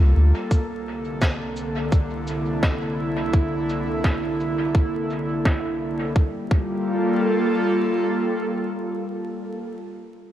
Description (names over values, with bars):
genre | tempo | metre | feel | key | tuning
ambient dub | 85 BPM | 4/4 | swing 55% on 16ths | G dorian | A4 = 440 Hz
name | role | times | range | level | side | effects
airy breathy pad | sustained chords | 0.0-9.7 s | C2 to A4 | -23 LUFS | equal | chorus
cabasa and snare drum | drums | 0.5-5.6 s | none | -31 LUFS | equal | low-pass filter on snare, low-pass filter on perc, low-pass filter on room, dub echo
electronic kick drum | drums | 0.5-6.7 s | none | -19 LUFS | equal | none
room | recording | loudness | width
light reverb, studio reverb | vinyl crackle | -21 LUFS | side -12 dB against mid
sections
0.0-6.2 A section; 6.2-9.0 B section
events
none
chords
0.0 Gm9; 0.5 C13; 6.2 Gm9